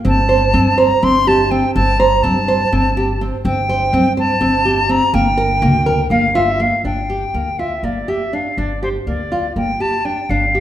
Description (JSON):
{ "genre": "contemporary instrumental, chamber music in an uneven meter", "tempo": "245 BPM (eighths)", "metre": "7/8", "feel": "straight", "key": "G dorian", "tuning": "A4 = 440 Hz", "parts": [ { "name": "nylon-string guitar", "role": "arpeggios", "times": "0.0-10.6 s", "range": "Bb3 to C5", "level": "-17 LUFS", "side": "right 2 dB", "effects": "none" }, { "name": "bright reedy silver concert flute", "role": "melody", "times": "0.1-10.6 s", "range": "C5 to C6", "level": "-18 LUFS", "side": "left 1 dB", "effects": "none" }, { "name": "upright bass", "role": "bass", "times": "0.1-10.6 s", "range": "G1 to G2", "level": "-20 LUFS", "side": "equal", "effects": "none" } ], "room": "wet recital hall reverb, RT60 1.6 s", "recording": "minimal, uncompressed stereo recording", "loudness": "-13 LUFS", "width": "side -12 dB against mid", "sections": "0.0-6.8 A section; 6.8-10.6 B section", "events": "none", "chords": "0.1 C5/G; 5.1 Gm7; 6.8 Gm", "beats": "| 0.05 0.30 0.54 0.79 1.03 1.28 1.52 | 1.76 2.00 2.25 2.49 2.73 2.97 3.21 | 3.45 3.69 3.93 4.17 4.41 4.65 4.89 | 5.13 5.38 5.62 5.86 6.11 6.35 6.60 | 6.85 7.10 7.34 7.59 7.84 8.08 8.33 | 8.58 8.82 9.07 9.31 9.56 9.80 10.05 | 10.29 10.54" }